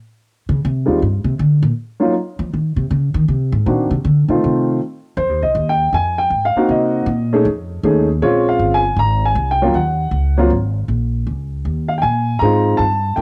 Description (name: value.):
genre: jazz piano trio.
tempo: 158 BPM.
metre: 4/4.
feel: swing 66% on 8ths.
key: F minor from 5.2 s.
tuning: A4 = 442 Hz.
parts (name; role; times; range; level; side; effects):
upright bass; bass; 0.5-13.2 s; G1 to F3; -20 LUFS; equal; none.
warm upright piano; melody; 0.9-13.2 s; Eb3 to Bb5; -18 LUFS; equal; cassette tape.
room: light reverb, small room ambience.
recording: home recording on cassette.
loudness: -17 LUFS.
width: mono.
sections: 0.0-5.2 A section; 5.2-13.2 B section.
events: upright bass solo 0.0-5.2.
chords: 0.0 N.C.; 0.6 F7sus2 (rootless); 1.4 Bb; 2.1 Abadd11; 3.7 Cm7b5; 4.4 F7; 5.2 Fm7; 6.7 Cm7b5; 7.5 F7alt; 8.2 Bbm9; 9.7 Ebm7; 10.5 Absus2; 11.3 Dbmaj9.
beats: 0.23 | 0.61 0.99 1.38 1.75 | 2.13 2.51 2.89 3.27 | 3.65 4.03 4.41 4.79 | 5.17 5.55 5.93 6.31 | 6.69 7.07 7.45 7.83 | 8.21 8.60 8.98 9.36 | 9.74 10.12 10.50 10.89 | 11.27 11.65 12.03 12.42 | 12.80 13.18.